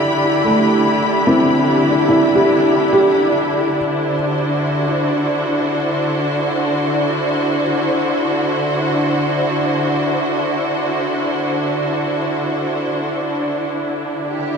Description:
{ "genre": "ambient", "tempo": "free time", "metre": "none", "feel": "none", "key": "D mixolydian", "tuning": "A4 = 438 Hz", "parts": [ { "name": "clear studio string section", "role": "sustained chords", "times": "0.0-14.6 s", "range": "D3 to B5", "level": "-16 LUFS", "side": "equal", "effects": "none" }, { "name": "felt-muted upright piano", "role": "arpeggios", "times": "0.0-4.1 s", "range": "A3 to G4", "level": "-16 LUFS", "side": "equal", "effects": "ping-pong delay" } ], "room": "wet huge ambient reverb, RT60 8.6 s", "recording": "none", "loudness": "-15 LUFS", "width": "side -6 dB against mid", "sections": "0.0-3.8 A section; 3.8-14.6 B section", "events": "none", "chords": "0.0 Cmaj7/D; 3.8 D7; 13.7 G5/D", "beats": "free time" }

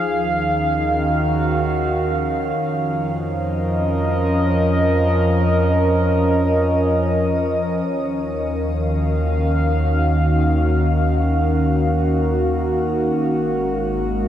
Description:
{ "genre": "ambient", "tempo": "free time", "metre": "none", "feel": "none", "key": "Eb minor", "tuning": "A4 = 440 Hz", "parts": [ { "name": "warbly tape-like pad", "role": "sustained chords", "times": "0.0-14.3 s", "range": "Eb3 to F5", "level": "-18 LUFS", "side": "equal", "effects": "chorus, built-in reverb, shimmer reverb" }, { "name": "warm sub bass", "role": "bass", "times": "0.0-14.3 s", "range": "Ab1 to F2", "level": "-22 LUFS", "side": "equal", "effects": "tube saturation" }, { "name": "analog drone", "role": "drone", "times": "9.2-14.3 s", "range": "Eb3 to Bb3", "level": "-26 LUFS", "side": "right 1 dB", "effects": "chorus" } ], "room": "wet cathedral reverb, RT60 5.6 s", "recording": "dark, warm production", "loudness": "-17 LUFS", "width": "side -10 dB against mid", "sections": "0.0-7.9 A section; 7.9-14.3 B section", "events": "fade-in on sub bass 0.0-7.9", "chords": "0.0 Ebm9; 2.6 Db6/F; 7.9 Ebm9; 13.2 Ab7", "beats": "free time" }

